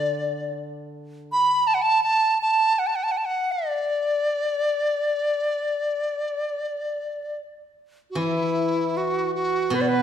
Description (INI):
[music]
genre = chinese traditional, Chinese chamber ensemble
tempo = 73-82 BPM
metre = 4/4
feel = rubato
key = D gong mode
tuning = A4 = 441 Hz
[part]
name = bright reedy large dizi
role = melody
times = 0.0-10.0 s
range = E4 to B5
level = -22 LUFS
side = equal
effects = none
[part]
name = steel-string zither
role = accompaniment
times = 0.0-1.3, 8.2-10.0 s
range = B2 to E3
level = -27 LUFS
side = left 1 dB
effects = none
[sound]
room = moderate scoring stage reverb, RT60 1.4 s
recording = minimal, uncompressed stereo recording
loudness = -21 LUFS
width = side -9 dB against mid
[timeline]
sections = 0.0-8.2 A section; 8.2-10.0 B section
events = none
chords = none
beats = 0.57 1.30 | 2.05 2.79 3.53 4.28 | 5.04 5.81 6.58 7.38 | 8.18 8.95 9.73